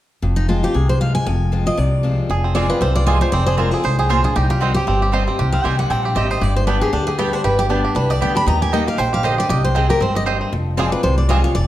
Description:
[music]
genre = bluegrass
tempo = 233 BPM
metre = 4/4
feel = swing 56% on 8ths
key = unclear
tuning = A4 = 440 Hz
[part]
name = picked steel-string acoustic guitar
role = accompaniment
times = 0.2-11.7 s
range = F2 to G4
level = -24 LUFS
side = left 4 dB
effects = none
[part]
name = upright bass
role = bass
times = 0.2-11.7 s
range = F1 to Eb2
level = -19 LUFS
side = equal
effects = none
[part]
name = picked steel-string acoustic guitar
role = melody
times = 0.4-11.7 s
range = D4 to B5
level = -21 LUFS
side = equal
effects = none
[part]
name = bluegrass banjo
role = arpeggios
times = 2.3-11.4 s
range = C4 to C5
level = -22 LUFS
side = right 3 dB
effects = none
[part]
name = mandolin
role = stabs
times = 2.5-11.4 s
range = Bb3 to Ab5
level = -26 LUFS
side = right 5 dB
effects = none
[sound]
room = moderate recital hall reverb, RT60 1.3 s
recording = dark, warm production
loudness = -15 LUFS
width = side -13 dB against mid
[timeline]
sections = 0.2-2.3 A section; 2.3-10.5 B section; 10.5-11.7 B section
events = none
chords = 0.2 Fm; 4.4 Cm; 6.4 G; 8.5 Eb; 9.5 Cm; 10.5 Fm

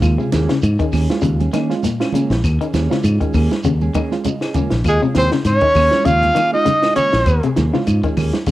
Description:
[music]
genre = afrobeat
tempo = 100 BPM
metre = 4/4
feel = swing 56% on 16ths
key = unclear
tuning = A4 = 439 Hz
[part]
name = reed electric piano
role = accompaniment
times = 0.0-8.3 s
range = Db3 to Ab5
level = -25 LUFS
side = right 5 dB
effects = fast tremolo, cassette tape
[part]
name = fingered electric bass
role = bass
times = 0.0-8.5 s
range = Bb1 to Ab2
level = -17 LUFS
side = equal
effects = none
[part]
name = compact cocktail drum kit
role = drums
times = 0.0-8.5 s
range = hi-hat, kick drum, snare drum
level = -22 LUFS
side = equal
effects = cassette tape
[part]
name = claves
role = percussion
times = 0.0-8.3 s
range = none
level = -34 LUFS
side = left 7 dB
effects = none
[part]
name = congas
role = percussion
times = 0.0-8.5 s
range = none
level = -26 LUFS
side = right 6 dB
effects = none
[part]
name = shekere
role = percussion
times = 0.0-8.5 s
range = none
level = -31 LUFS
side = right 2 dB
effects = none
[part]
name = clean electric guitar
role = arpeggios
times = 0.2-8.5 s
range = Bb2 to Eb3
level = -22 LUFS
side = left 5 dB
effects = tremolo, cassette tape
[part]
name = mellow electric guitar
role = stabs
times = 0.2-8.4 s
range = Bb3 to Ab4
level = -26 LUFS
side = right 5 dB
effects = phaser, cassette tape
[part]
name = warm trumpet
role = melody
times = 4.9-7.5 s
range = Ab4 to F5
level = -16 LUFS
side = equal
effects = cassette tape
[part]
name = bright alto saxophone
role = second line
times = 4.9-7.5 s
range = Ab3 to F4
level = -21 LUFS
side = right 4 dB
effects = cassette tape
[sound]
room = light reverb, studio reverb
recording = home recording on cassette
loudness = -14 LUFS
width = side -15 dB against mid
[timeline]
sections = 0.0-8.5 A section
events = reed electric piano fill 3.9-4.9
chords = 0.0 Eb7sus4

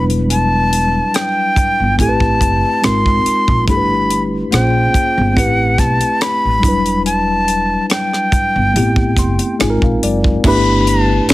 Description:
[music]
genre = R&B, neo-soul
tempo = 71 BPM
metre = 4/4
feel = swing 53% on 16ths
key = A dorian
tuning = A4 = 440 Hz
[part]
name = jazz flute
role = melody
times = 0.0-11.3 s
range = F#5 to B#5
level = -16 LUFS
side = left 1 dB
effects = none
[part]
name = mellow tine electric piano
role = accompaniment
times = 0.0-11.3 s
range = F#3 to C6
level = -18 LUFS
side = left 1 dB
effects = medium stereo tremolo
[part]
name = upright bass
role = bass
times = 0.0-11.3 s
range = E1 to B1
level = -17 LUFS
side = equal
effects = none
[part]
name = tight funk drum kit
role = drums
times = 0.1-11.3 s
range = crash cymbal, finger snaps, hi-hat, kick drum, rim click, snare drum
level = -17 LUFS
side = equal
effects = none
[sound]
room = light reverb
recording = heavily compressed radio sound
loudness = -12 LUFS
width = side -17 dB against mid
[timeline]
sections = 0.0-10.4 A section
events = tine electric piano fill 8.7-10.4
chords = 0.0 Em9; 2.0 Am7; 2.8 G#69; 3.7 G69; 4.5 Bbm7; 5.4 Am7; 6.6 Em9; 8.7 Am7; 9.6 G#69; 10.4 G69

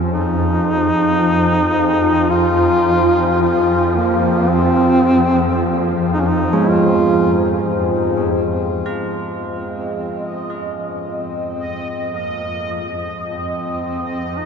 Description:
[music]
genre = dark ambient drone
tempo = 55 BPM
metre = 4/4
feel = straight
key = F minor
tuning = A4 = 437 Hz
[part]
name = deep dark ambient pad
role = sustained chords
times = 0.0-8.9 s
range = F4 to Ab5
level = -24 LUFS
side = equal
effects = chorus, built-in reverb
[part]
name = swarming drone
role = drone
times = 0.0-14.5 s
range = F2 to F3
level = -20 LUFS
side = equal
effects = built-in reverb
[part]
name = warm duduk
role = melody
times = 0.1-14.5 s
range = Bb3 to F4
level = -18 LUFS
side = equal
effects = ping-pong delay
[part]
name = carillon bells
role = arpeggios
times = 6.5-14.5 s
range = Ab3 to F4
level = -23 LUFS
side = right 3 dB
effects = ping-pong delay
[part]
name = bubbling stepped-filter texture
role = texture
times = 9.3-14.5 s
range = Eb5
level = -26 LUFS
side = equal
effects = chorus, built-in reverb
[sound]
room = wet huge ambient reverb, RT60 7.9 s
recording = nothing above 7.7 kHz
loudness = -15 LUFS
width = side -6 dB against mid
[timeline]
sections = 0.0-8.9 A section; 8.9-14.5 B section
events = fade-in on synth drone 8.9-14.5; fade-in on duduk 8.9-14.5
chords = 0.0 Fmadd9; 8.9 Fm

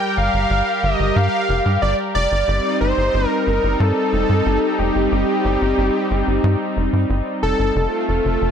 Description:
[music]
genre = synthwave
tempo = 91 BPM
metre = 4/4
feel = straight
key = unclear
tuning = A4 = 440 Hz
[part]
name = wide unison lead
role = melody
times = 0.0-8.5 s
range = G4 to G5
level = -20 LUFS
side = equal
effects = ping-pong delay
[part]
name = warm analog pad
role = sustained chords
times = 0.0-8.5 s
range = G3 to Bb4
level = -21 LUFS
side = equal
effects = wide subtle chorus
[part]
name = tight sequencer bass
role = bass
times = 0.2-8.5 s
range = F1 to G2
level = -20 LUFS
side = equal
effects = none
[sound]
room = light reverb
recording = bright 1980s-style digital production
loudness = -16 LUFS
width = side -8 dB against mid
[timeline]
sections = 0.0-8.5 A section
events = none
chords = 0.0 Gm7; 2.5 Cm; 7.8 F

